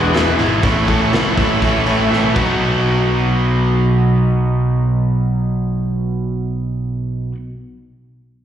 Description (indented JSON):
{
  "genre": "classic rock",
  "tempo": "121 BPM",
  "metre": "4/4",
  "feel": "straight",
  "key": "B mixolydian",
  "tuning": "A4 = 440 Hz",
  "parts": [
    { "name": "bright tonewheel organ", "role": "sustained chords", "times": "0.0-2.4 s", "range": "G#3 to F#5", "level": "-21 LUFS", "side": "left 1 dB", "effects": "overdrive, chorus vibrato, slow rotary speaker, plate reverb" },
    { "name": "biting overdriven guitar", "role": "riff", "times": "0.0-7.4 s", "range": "E2 to B3", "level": "-18 LUFS", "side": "right 4 dB", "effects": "slapback echo" },
    { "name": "crunchy overdriven guitar", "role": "riff", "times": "0.0-7.4 s", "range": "A2 to F#4", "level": "-21 LUFS", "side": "left 8 dB", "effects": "slapback echo" },
    { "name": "picked electric bass", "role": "bass", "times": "0.0-7.3 s", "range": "E1 to A2", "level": "-21 LUFS", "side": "left 1 dB", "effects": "none" },
    { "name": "vintage drum kit", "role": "drums", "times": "0.1-2.5 s", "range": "crash cymbal, hi-hat, kick drum, snare drum, toms", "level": "-21 LUFS", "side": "equal", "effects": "none" }
  ],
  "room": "light reverb",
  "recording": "live gig heard through the venue's PA, recital hall reverb",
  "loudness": "-14 LUFS",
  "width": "side -10 dB against mid",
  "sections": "0.0-2.6 A section; 2.6-6.6 B section",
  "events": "drum fill 2.1-2.6",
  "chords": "0.0 E; 0.6 A; 2.4 B"
}